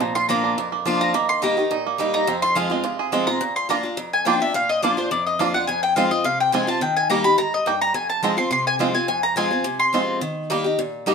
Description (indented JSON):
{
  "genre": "bluegrass",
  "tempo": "212 BPM",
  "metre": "4/4",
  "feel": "straight",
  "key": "unclear",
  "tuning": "A4 = 440 Hz",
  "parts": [
    { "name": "bluegrass banjo", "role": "melody", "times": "0.0-11.1 s", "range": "Eb3 to Ab4", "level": "-24 LUFS", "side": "right 7 dB", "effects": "none" },
    { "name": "mandolin", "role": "melody", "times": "0.0-10.2 s", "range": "C5 to C6", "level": "-21 LUFS", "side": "left 1 dB", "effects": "none" },
    { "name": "picked acoustic archtop guitar", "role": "accompaniment", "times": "0.0-11.1 s", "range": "F2 to G4", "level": "-23 LUFS", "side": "left 2 dB", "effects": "none" }
  ],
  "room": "moderate studio reverb, RT60 0.9 s",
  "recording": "minimal, uncompressed stereo recording",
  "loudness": "-18 LUFS",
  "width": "side -5 dB against mid",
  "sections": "0.0-3.4 A section; 3.4-11.1 A section",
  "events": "mandolin solo 0.0-11.1",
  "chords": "0.0 Bb; 1.1 Eb; 2.3 Fm; 3.4 Bb; 5.7 Fm; 6.8 Eb; 8.0 Fm; 10.2 Eb",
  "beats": "| 0.01 0.29 0.57 0.86 | 1.14 1.43 1.71 1.99 | 2.28 2.56 2.84 3.13 | 3.41 3.69 3.98 4.26 | 4.55 4.83 5.11 5.40 | 5.68 5.96 6.25 6.53 | 6.82 7.10 7.38 7.67 | 7.95 8.23 8.52 8.80 | 9.09 9.37 9.65 9.94 | 10.22 10.50 10.79 11.07"
}